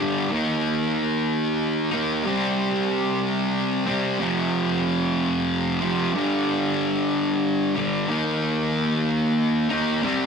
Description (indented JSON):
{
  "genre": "rock",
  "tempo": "62 BPM (dotted quarters)",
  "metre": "6/8",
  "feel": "straight",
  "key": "unclear",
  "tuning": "A4 = 440 Hz",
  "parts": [
    { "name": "thick fuzz guitar", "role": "solo", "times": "0.0-10.3 s", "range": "F2 to Eb4", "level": "-21 LUFS", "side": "equal", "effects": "distortion" }
  ],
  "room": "moderate small room reverb, RT60 0.5 s",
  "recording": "rough rehearsal-room recording, tube saturation",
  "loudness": "-21 LUFS",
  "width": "side -6 dB against mid",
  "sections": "0.0-10.3 A section",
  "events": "none",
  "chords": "0.3 Eb5; 2.3 C5; 4.2 F5; 6.2 G5; 8.1 Eb5"
}